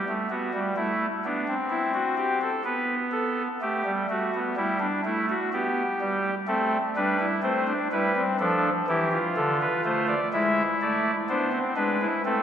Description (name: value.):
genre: classical, baroque-style 4-part fugue for pipe organ.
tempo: 63 BPM.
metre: 4/4.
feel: straight.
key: unclear.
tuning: A4 = 440 Hz.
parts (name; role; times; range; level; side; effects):
pipe organ, soft reed; solo; 0.0-12.4 s; D3 to E5; -23 LUFS; equal; none.
room: wet cathedral reverb, RT60 4.5 s.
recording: recorded in a church or concert hall.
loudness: -23 LUFS.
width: side -9 dB against mid.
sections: 0.0-12.4 A section.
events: none.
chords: 0.0 Em (rootless); 0.8 Am; 2.7 B5; 4.6 Em/G; 6.5 Am; 8.4 Dm; 10.3 E7/G#.